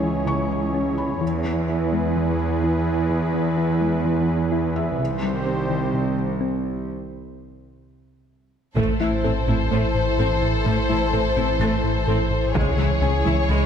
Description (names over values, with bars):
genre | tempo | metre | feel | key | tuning
cinematic, hybrid orchestral and electronic film score | 127 BPM | 4/4 | straight | A harmonic minor | A4 = 440 Hz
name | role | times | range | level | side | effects
warm analog pad | sustained chords | 0.0-13.7 s | Eb3 to C#5 | -26 LUFS | right 2 dB | chorus
thumb-piano-like synth pluck | arpeggios | 0.0-13.6 s | C3 to A4 | -29 LUFS | left 3 dB | chorus, digital delay
warm studio cello section | bass | 0.0-13.6 s | C2 to A2 | -25 LUFS | right 2 dB | none
felt-muted upright piano | texture | 0.0-13.7 s | E5 to A6 | -33 LUFS | left 2 dB | digital delay
dark studio violin section | melody | 8.8-13.7 s | C5 to C#5 | -28 LUFS | left 6 dB | none
warm symphonic violin section | second line | 8.8-13.7 s | G#4 to A4 | -30 LUFS | left 4 dB | none
clear symphonic viola section | accompaniment | 8.8-13.7 s | G#3 to E4 | -29 LUFS | right 2 dB | none
mellow French horn section | sustained chords | 8.8-13.7 s | E3 to C5 | -31 LUFS | left 4 dB | none
rubbery square bass | riff | 8.8-13.6 s | C#2 to A3 | -27 LUFS | left 4 dB | none
sub bass with octave | bass | 8.8-13.7 s | A1 to C#2 | -25 LUFS | equal | none
warm symphonic double bass section | bass | 8.8-13.6 s | A1 to C#2 | -29 LUFS | right 5 dB | none
taiko ensemble | drums | 8.8-9.7, 12.6-13.0 s | none | -28 LUFS | equal | none
room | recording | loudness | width
moderate scoring stage reverb, RT60 1.7 s | none | -19 LUFS | side -8 dB against mid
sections
0.0-8.8 A section; 8.8-13.7 A section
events
break 6.9-8.8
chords
0.0 C#m; 1.2 E; 5.0 Cm; 8.8 Am; 12.6 C#m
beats
0.27 0.74 | 1.21 1.69 2.16 2.63 | 3.10 3.58 4.05 4.52 | 4.99 5.47 5.94 6.41 | 6.88 7.36 7.83 8.30 | 8.77 9.25 9.72 10.19 | 10.66 11.13 11.61 12.08 | 12.55 13.03 13.50